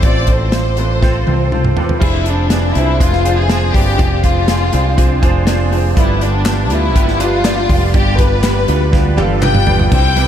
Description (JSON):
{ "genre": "piano-driven pop", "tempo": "122 BPM", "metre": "4/4", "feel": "straight", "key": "unclear", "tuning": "A4 = 440 Hz", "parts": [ { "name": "warm symphonic violin section", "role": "melody", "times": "0.0-10.3 s", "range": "D4 to G5", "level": "-18 LUFS", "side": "left 3 dB", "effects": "none" }, { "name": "clear concert grand piano", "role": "accompaniment", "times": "0.0-10.3 s", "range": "G2 to D6", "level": "-20 LUFS", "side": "right 1 dB", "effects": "ensemble chorus" }, { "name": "picked electric bass", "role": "bass", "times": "0.0-10.3 s", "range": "F1 to D2", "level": "-16 LUFS", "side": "equal", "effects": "none" }, { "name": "natural country drum kit", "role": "drums", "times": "0.0-10.3 s", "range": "crash cymbal, hi-hat, kick drum, snare drum, toms", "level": "-16 LUFS", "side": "equal", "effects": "none" }, { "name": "direct-recorded clean electric guitar", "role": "riff", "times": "2.0-9.9 s", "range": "G2 to Ab4", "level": "-23 LUFS", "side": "right 7 dB", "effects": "analog chorus" }, { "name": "group handclap", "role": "percussion", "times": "6.5-9.5 s", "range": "none", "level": "-32 LUFS", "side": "left 3 dB", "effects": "none" } ], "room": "light reverb, studio reverb", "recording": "none", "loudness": "-11 LUFS", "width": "side -10 dB against mid", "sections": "0.0-2.0 A section; 2.0-9.9 B section", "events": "drum fill 1.0-2.0, 8.9-9.9; grand piano fill 1.0-2.0, 8.9-9.9", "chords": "0.0 F/A; 2.0 Fm6; 6.0 G7", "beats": "| 0.04 0.53 1.03 1.52 | 2.02 2.51 3.00 3.50 | 3.99 4.49 4.98 5.47 | 5.97 6.46 6.95 7.45 | 7.94 8.44 8.93 9.42 | 9.92" }